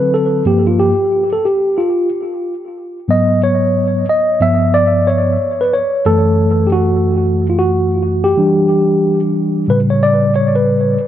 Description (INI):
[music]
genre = hip hop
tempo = 91 BPM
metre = 4/4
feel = swing 62% on 16ths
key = unclear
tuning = A4 = 440 Hz
[part]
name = mellow tine electric piano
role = solo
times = 0.0-11.0 s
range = F#2 to E5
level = -12 LUFS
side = equal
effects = fast stereo tremolo, tape echo
[sound]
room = moderate spring reverb, RT60 1.7 s, digital ambience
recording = echo-heavy mix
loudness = -12 LUFS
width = side -11 dB against mid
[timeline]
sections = 0.0-11.0 A section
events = tine electric piano solo 0.0-11.0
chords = 0.5 Gm7; 3.1 G#m7; 4.4 G7; 5.7 F#m7; 8.4 Em7; 9.7 A7